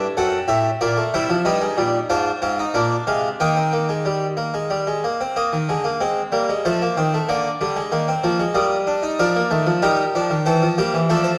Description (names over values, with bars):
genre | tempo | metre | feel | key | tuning
classical, baroque-style 4-part fugue for harpsichord | 94 BPM | 3/4 | straight | Eb major | A4 = 439 Hz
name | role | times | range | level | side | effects
harpsichord | solo | 0.0-11.4 s | F#2 to G5 | -20 LUFS | equal | none
room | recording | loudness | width
moderate scoring stage reverb, RT60 1.6 s | worn, warbling old tape, cassette tape, warbly pitch drift | -20 LUFS | mono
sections
0.0-5.4 A section; 5.4-11.4 B section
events
none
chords
0.0 D7 (rootless); 0.8 Gm/Bb; 1.5 Eb/G; 2.1 Fm/Ab; 2.7 Bb7; 3.4 Eb; 6.6 F7; 7.3 Bb/D; 8.6 Eb/G; 9.2 Bb; 10.5 C7/E